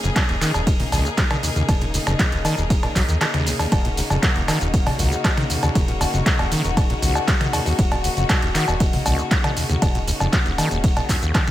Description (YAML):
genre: acid house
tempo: 118 BPM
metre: 4/4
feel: straight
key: Eb minor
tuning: A4 = 440 Hz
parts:
  - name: bright symphonic string section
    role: sustained chords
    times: 0.0-11.5 s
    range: Db3 to Ab4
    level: -26 LUFS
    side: left 2 dB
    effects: sidechain pumping
  - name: acid bass, saw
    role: riff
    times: 0.0-11.5 s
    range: Eb1 to Gb3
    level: -24 LUFS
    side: equal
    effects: cassette tape, sidechain pumping, ping-pong delay
  - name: warm sub bass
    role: bass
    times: 0.0-11.5 s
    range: Eb1 to Eb2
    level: -26 LUFS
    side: equal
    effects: sidechain pumping
  - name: booming analog drum machine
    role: drums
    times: 0.0-11.5 s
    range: cowbell, finger snaps, handclaps, hi-hat, ride cymbal, shaker, toms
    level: -23 LUFS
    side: equal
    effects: none
  - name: electronic kick drum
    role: drums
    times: 0.2-11.4 s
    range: none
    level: -20 LUFS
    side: equal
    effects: overdrive
room: digital ambience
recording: none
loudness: -17 LUFS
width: side -14 dB against mid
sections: 0.0-11.5 A section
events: none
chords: 0.0 Ebm7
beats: 0.16 0.67 1.18 | 1.69 2.19 2.70 3.21 | 3.72 4.23 4.74 5.25 | 5.75 6.26 6.77 7.28 | 7.79 8.29 8.80 9.31 | 9.82 10.33 10.84 11.35